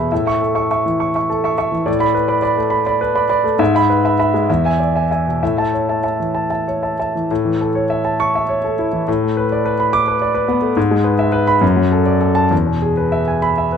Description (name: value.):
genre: classical, virtuoso piano study.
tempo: 62-72 BPM (dotted quarters).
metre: 6/8.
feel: rubato.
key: A major.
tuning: A4 = 438 Hz.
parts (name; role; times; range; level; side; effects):
clear grand piano; solo; 0.0-13.8 s; E2 to D6; -14 LUFS; equal; none.
room: moderate large studio reverb, RT60 0.8 s.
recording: dark, warm production.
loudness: -14 LUFS.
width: side -7 dB against mid.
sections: 0.0-7.3 A section; 7.3-13.8 A section.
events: none.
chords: 0.1 A; 1.9 Bm7/A; 3.6 E/G#; 4.5 E7; 5.4 A; 9.1 Bm7/A; 10.8 E/G#; 11.6 D/F#; 12.5 E.